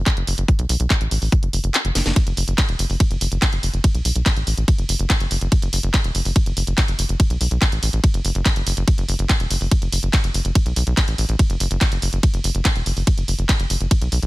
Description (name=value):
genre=psychedelic trance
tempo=143 BPM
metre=4/4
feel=straight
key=F# minor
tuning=A4 = 439 Hz
part: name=tight sequencer bass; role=bass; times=0.0-14.3 s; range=E1 to B1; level=-20 LUFS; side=equal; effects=tube saturation
part: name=electronic kick drum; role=drums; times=0.1-14.0 s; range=none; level=-17 LUFS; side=equal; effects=none
part: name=garage drum kit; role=drums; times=0.1-14.3 s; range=handclaps, hi-hat, ride cymbal, snare drum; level=-24 LUFS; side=right 1 dB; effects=none
room=digital ambience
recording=none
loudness=-17 LUFS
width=side -19 dB against mid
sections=0.0-14.3 A section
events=kick drops out 1.7-2.2; drum fill 2.0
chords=none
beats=0.06 | 0.48 0.90 1.32 1.74 | 2.16 2.58 3.00 3.42 | 3.84 4.26 4.68 5.10 | 5.52 5.94 6.36 6.78 | 7.20 7.62 8.04 8.46 | 8.88 9.29 9.71 10.13 | 10.55 10.97 11.39 11.81 | 12.23 12.65 13.07 13.49 | 13.91